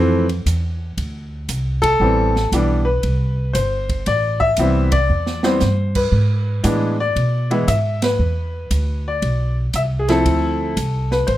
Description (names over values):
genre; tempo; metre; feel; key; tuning
jazz piano trio; 116 BPM; 4/4; swing 67% on 8ths; A minor; A4 = 440 Hz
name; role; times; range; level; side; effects
bright upright piano; melody; 0.0-11.4 s; E3 to E5; -19 LUFS; left 1 dB; none
upright bass; bass; 0.0-11.4 s; G1 to B2; -19 LUFS; right 1 dB; none
open jazz drum kit; drums; 0.3-11.4 s; crash cymbal, hi-hat, kick drum, ride cymbal, snare drum; -27 LUFS; right 2 dB; none
room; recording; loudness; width
light reverb; none; -16 LUFS; side -14 dB against mid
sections
0.0-11.4 A section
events
band accent 1.7, 4.8, 7.9; drum fill 5.1-5.6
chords
0.0 Dm7; 2.0 Am7; 6.1 E7; 10.3 Dm7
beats
0.45 0.97 1.48 | 2.00 2.52 3.03 3.55 | 4.07 4.58 5.10 5.61 | 6.13 6.64 7.16 7.67 | 8.19 8.71 9.22 9.74 | 10.25 10.77 11.28